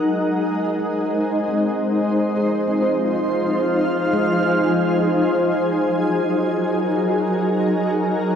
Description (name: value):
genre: ambient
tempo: 75 BPM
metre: 4/4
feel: straight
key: Gb lydian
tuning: A4 = 440 Hz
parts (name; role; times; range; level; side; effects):
- shimmering ambient pad; sustained chords; 0.0-8.4 s; F3 to Gb5; -18 LUFS; equal; chorus, built-in reverb, shimmer reverb
- handpan; arpeggios; 0.8-7.0 s; Ab3 to C5; -28 LUFS; right 1 dB; diffuse ambient delay, shimmer reverb
room: wet cathedral reverb, RT60 5.2 s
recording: in a vast, echoing space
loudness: -17 LUFS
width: side -8 dB against mid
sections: 0.0-8.4 A section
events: fade-in on handpan 0.0-8.4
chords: 0.0 Ab9; 2.2 Fm7; 5.4 Gb69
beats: 0.66 1.45 | 2.24 3.03 3.83 4.64 | 5.44 6.24 7.05 7.84